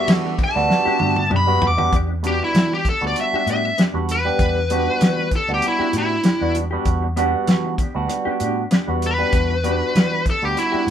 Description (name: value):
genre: straight-eighth soul blues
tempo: 97 BPM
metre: 4/4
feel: swing 54% on 16ths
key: E minor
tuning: A4 = 440 Hz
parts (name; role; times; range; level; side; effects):
- smooth overdriven lead guitar; melody; 0.0-10.9 s; E4 to D6; -20 LUFS; left 1 dB; none
- barky tine electric piano; accompaniment; 0.0-10.9 s; G3 to G4; -24 LUFS; right 3 dB; phaser
- clear horn section; sustained chords; 0.0-1.9 s; D5 to E5; -34 LUFS; equal; none
- vintage muted fingered electric bass; bass; 0.1-10.9 s; D2 to E3; -24 LUFS; equal; none
- warm soul drum kit; drums; 0.1-10.9 s; hi-hat, kick drum, ride cymbal, snare drum, toms; -19 LUFS; equal; none
- mellow electric guitar; stabs; 0.2-10.9 s; B3 to G4; -28 LUFS; left 2 dB; tremolo, analog delay
room: moderate studio reverb, RT60 0.5 s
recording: band playing live in one room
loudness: -17 LUFS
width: side -9 dB against mid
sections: 0.0-1.9 A section; 1.9-10.9 B section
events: lead electric guitar solo 0.0-1.9; drum fill 0.7-1.9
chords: 0.0 Em7